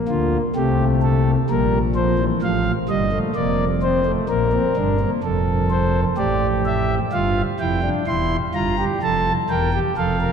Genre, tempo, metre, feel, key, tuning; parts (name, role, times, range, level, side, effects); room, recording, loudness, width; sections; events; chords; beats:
classical, baroque-style 4-part fugue for pipe organ; 64 BPM; 3/4; straight; A4 = 440 Hz
pipe organ, principal; solo; 0.0-10.3 s; E1 to C6; -18 LUFS; equal
wet cathedral reverb, RT60 6.1 s; -18 LUFS; side -7 dB against mid
0.0-10.3 A section
0.0 Bb; 1.5 C7/Bb; 2.4 F7; 4.3 Bb; 5.2 F; 7.1 G5; 8.1 C7/E
0.55 1.49 | 2.42 3.35 4.29 | 5.24 6.18 7.12 | 8.07 9.02 9.97